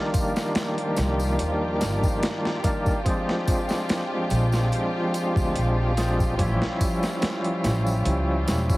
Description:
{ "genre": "trip hop", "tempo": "72 BPM", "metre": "4/4", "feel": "swing 53% on 16ths", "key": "C minor", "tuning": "A4 = 440 Hz", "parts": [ { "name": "overdriven tonewheel organ", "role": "accompaniment", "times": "0.0-8.8 s", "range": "Eb3 to E4", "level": "-26 LUFS", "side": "equal", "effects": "tremolo, vintage 12-bit sampler grit, tape echo" }, { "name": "rich symphonic violin section", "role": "sustained chords", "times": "0.0-8.8 s", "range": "F4 to G4", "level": "-33 LUFS", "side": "equal", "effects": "vintage 12-bit sampler grit" }, { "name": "backwards swelling texture", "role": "texture", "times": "0.0-8.8 s", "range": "F3 to F4", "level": "-37 LUFS", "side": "equal", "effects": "none" }, { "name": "dusty soul sampler-style drum kit", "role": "drums", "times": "0.1-8.8 s", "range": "hi-hat, kick drum, snare drum", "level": "-26 LUFS", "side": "equal", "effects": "overdrive" }, { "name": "tambourine", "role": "percussion", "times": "0.1-8.8 s", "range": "none", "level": "-41 LUFS", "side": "left 2 dB", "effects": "none" }, { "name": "upright bass", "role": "bass", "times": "1.0-8.7 s", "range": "E1 to D2", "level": "-25 LUFS", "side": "equal", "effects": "none" } ], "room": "light reverb, studio ambience", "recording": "heavily compressed radio sound, multiband compression, vinyl crackle", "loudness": "-22 LUFS", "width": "side -19 dB against mid", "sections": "0.0-8.8 A section", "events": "none", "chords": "0.0 Cm7; 3.1 Bb7; 6.4 A7b13", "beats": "0.56 1.39 2.23 | 3.06 3.89 4.73 5.56 | 6.39 7.23 8.06" }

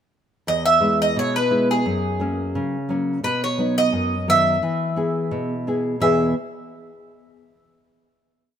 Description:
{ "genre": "greek folk", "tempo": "87 BPM", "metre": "2/4", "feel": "straight", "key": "E major", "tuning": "A4 = 440 Hz", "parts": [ { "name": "Greek bouzouki", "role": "melody", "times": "0.5-6.3 s", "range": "G#4 to E5", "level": "-20 LUFS", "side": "right 1 dB", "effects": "none" }, { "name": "nylon-string guitar", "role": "accompaniment", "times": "0.5-6.3 s", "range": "E2 to B4", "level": "-22 LUFS", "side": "equal", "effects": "none" } ], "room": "moderate plate reverb, RT60 2.8 s", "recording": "minimal, uncompressed stereo recording", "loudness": "-18 LUFS", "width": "side -8 dB against mid", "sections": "0.5-6.0 A section; 6.0-7.4 final chord", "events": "none", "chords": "0.5 E; 1.9 F#; 3.2 B; 4.6 E", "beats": "| 0.48 1.17 | 1.86 2.56 | 3.25 3.94 | 4.63 5.32 | 6.01" }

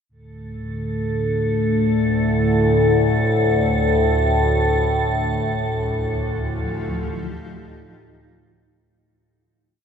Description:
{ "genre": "dark ambient drone", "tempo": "free time", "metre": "none", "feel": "none", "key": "D phrygian", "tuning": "A4 = 440 Hz", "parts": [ { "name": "overtone-sweeping drone", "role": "drone", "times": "0.4-8.9 s", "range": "D2 to A2", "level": "-20 LUFS", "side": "equal", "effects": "chorus, built-in reverb" }, { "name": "icy glass pad", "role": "texture", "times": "0.9-8.9 s", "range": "A4", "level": "-22 LUFS", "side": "left 1 dB", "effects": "chorus, built-in reverb" }, { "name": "granular cloud pad", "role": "sustained chords", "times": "5.6-8.8 s", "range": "D2 to G4", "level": "-32 LUFS", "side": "equal", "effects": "built-in reverb" } ], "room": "wet cathedral reverb, RT60 5.5 s", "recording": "none", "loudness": "-17 LUFS", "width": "side -7 dB against mid", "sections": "0.1-8.8 A section", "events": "fade-out 4.5-8.8", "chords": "0.1 D5; 4.5 Ebadd9/D", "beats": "free time" }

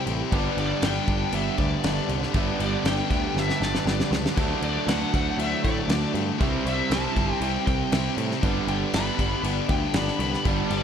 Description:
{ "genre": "classic rock", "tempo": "118 BPM", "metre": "4/4", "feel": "straight", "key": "unclear", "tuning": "A4 = 441 Hz", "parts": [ { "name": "dark smooth lead guitar", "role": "melody", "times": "0.0-10.8 s", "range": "D5 to B5", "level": "-31 LUFS", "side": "left 1 dB", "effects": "wah, overdrive, slapback echo" }, { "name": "dark baby grand piano", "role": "accompaniment", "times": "0.0-10.8 s", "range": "D4 to E5", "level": "-38 LUFS", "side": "left 1 dB", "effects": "none" }, { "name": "fingerpicked twelve-string acoustic guitar", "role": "accompaniment", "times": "0.0-10.8 s", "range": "G2 to G4", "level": "-37 LUFS", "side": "left 2 dB", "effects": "none" }, { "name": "biting overdriven guitar", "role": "riff", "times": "0.0-10.8 s", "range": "G2 to D4", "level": "-32 LUFS", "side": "right 1 dB", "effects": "none" }, { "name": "crunchy overdriven guitar", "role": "riff", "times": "0.0-10.8 s", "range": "G2 to E4", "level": "-31 LUFS", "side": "right 9 dB", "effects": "slapback echo" }, { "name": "tight distorted guitar", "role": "riff", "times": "0.0-10.8 s", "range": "G2 to E4", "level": "-31 LUFS", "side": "left 10 dB", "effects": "distortion, slapback echo" }, { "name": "overdriven picked electric bass", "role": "bass", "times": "0.1-10.8 s", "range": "G1 to A2", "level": "-29 LUFS", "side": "equal", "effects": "none" }, { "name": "damped 70s drum kit", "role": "drums", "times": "0.1-10.8 s", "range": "crash cymbal, kick drum, snare drum", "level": "-28 LUFS", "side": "equal", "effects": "none" } ], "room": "moderate lush hall reverb, RT60 1.8 s, small room ambience", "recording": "big arena sound", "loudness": "-22 LUFS", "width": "side -8 dB against mid", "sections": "0.0-10.8 A section", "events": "drum fill 3.4-4.4", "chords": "0.3 G; 4.4 D; 6.4 C; 8.4 G", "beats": "| 0.32 0.83 1.33 1.84 | 2.35 2.85 3.36 3.87 | 4.37 4.88 5.39 5.89 | 6.40 6.91 7.41 7.92 | 8.43 8.93 9.44 9.95 | 10.46" }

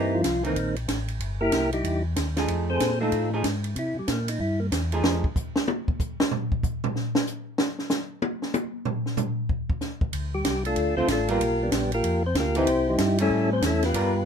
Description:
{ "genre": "soul jazz organ trio", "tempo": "188 BPM", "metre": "4/4", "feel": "swing 63% on 8ths", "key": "unclear", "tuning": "A4 = 435 Hz", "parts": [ { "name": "percussive tonewheel organ", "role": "melody", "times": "0.0-4.7, 10.3-14.2 s", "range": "D#3 to C5", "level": "-24 LUFS", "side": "left 1 dB", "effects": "slow rotary speaker" }, { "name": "archtop guitar, miked and amplified", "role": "accompaniment", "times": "0.0-5.2, 11.0-14.1 s", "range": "D3 to Bb4", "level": "-29 LUFS", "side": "right 3 dB", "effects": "none" }, { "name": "mellow tonewheel organ", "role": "bass", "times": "0.0-5.2, 10.1-14.2 s", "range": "G1 to C3", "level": "-28 LUFS", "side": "equal", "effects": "chorus vibrato, slow rotary speaker" }, { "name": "compact cocktail drum kit", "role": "drums", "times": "0.2-14.0 s", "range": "hi-hat, kick drum, ride cymbal, snare drum, toms", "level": "-27 LUFS", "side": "equal", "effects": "none" } ], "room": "light reverb", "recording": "minimal, uncompressed stereo recording", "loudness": "-23 LUFS", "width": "side -7 dB against mid", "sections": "0.0-14.3 A section", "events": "tonewheel organ solo 0.0-14.3; drum solo 5.0-10.1", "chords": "0.0 C7#9; 2.5 F7#9; 3.8 C7; 5.0 F7#9; 7.6 N.C.; 10.1 Dm7; 11.4 G7#9; 12.7 C; 13.3 A7", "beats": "0.24 0.56 0.89 | 1.21 1.52 1.84 2.16 | 2.48 2.80 3.12 3.44 | 3.76 4.08 4.40 4.72 | 5.04 5.36 5.67 5.99 | 6.31 6.63 6.95 7.27 | 7.59 7.91 8.22 8.54 | 8.86 9.18 9.49 9.81 | 10.13 10.45 10.77 11.09 | 11.40 11.72 12.04 12.36 | 12.67 12.99 13.31 13.62 | 13.94" }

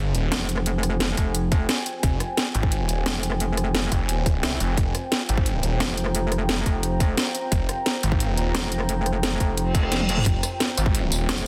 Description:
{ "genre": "dark technical drum and bass", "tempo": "175 BPM", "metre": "4/4", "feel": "straight", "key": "F minor", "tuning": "A4 = 441 Hz", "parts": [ { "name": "deep dark ambient pad", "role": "sustained chords", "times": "0.0-11.5 s", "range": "F4 to Bb5", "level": "-33 LUFS", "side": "equal", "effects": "chorus, built-in reverb, sidechain pumping" }, { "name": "snarling distorted saw bass", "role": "bass", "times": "0.0-11.3 s", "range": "Eb1 to Ab1", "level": "-27 LUFS", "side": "equal", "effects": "distortion, overdrive, sidechain pumping" }, { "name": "drum and bass drum kit", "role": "drums", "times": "0.1-11.4 s", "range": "hi-hat, rim click, snare drum, tambourine, toms", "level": "-28 LUFS", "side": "equal", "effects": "overdrive, studio ambience" }, { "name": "metallic wobble bass", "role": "bass", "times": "0.3-11.5 s", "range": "F1 to C2", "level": "-27 LUFS", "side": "equal", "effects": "chorus" }, { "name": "electronic kick drum", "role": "drums", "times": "1.2-10.9 s", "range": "none", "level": "-25 LUFS", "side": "equal", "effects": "overdrive, studio ambience" }, { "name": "reverse cymbal", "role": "sound effects", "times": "9.7-10.3 s", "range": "none", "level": "-33 LUFS", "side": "equal", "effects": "none" } ], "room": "light reverb, digital ambience", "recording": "dense, heavily limited modern master", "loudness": "-23 LUFS", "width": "mono", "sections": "0.0-11.5 A section", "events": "reverse cymbal 9.7-10.3; drum fill 9.9-10.3", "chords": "0.0 Fmadd9", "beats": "0.32 | 0.66 1.00 1.35 1.69 | 2.03 2.38 2.72 3.06 | 3.40 3.75 4.09 4.43 | 4.78 5.12 5.46 5.80 | 6.15 6.49 6.83 7.17 | 7.52 7.86 8.20 8.55 | 8.89 9.23 9.57 9.92 | 10.26 10.60 10.95 11.29" }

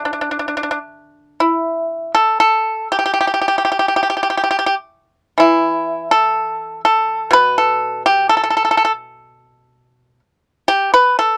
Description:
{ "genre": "chinese traditional, Chinese solo plucked strings", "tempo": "55-63 BPM", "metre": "4/4", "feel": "rubato", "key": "D zhi mode", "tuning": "A4 = 440 Hz", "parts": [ { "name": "pipa", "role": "solo", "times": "0.0-11.4 s", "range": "B2 to B4", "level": "-16 LUFS", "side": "equal", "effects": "none" } ], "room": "light reverb", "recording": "dry, close 1970s-style studio recording", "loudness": "-16 LUFS", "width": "mono", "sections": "0.0-1.4 A section; 1.4-11.4 B section", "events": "none", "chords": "none", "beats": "0.34 | 1.39 2.40 3.42 4.42 | 5.39 6.36 7.33 8.28 | 9.25 10.20 11.16" }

